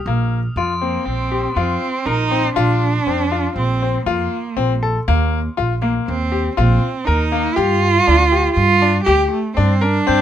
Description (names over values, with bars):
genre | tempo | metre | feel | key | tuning
contemporary instrumental, chamber music in an uneven meter | 120 BPM | 5/4 | straight | unclear | A4 = 439 Hz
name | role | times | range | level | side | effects
bright grand piano | arpeggios | 0.1-10.2 s | Bb3 to Bb4 | -21 LUFS | left 6 dB | none
upright bass | bass | 0.1-10.2 s | Bb1 to G2 | -19 LUFS | right 1 dB | none
crotales | texture | 0.6-1.6, 10.1-10.2 s | C6 to G6 | -29 LUFS | left 3 dB | none
rich cello | melody | 0.8-10.2 s | A3 to G4 | -18 LUFS | right 4 dB | none
room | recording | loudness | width
little or no reverb | close, detailed microphones | -15 LUFS | side -10 dB against mid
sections
0.1-10.1 A section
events
none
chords
0.1 Bbsus2; 5.1 Ebsus2; 7.6 G5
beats
| 0.06 0.56 1.06 1.56 2.06 | 2.56 3.06 3.56 4.06 4.56 | 5.06 5.57 6.07 6.57 7.07 | 7.57 8.07 8.57 9.07 9.57 | 10.07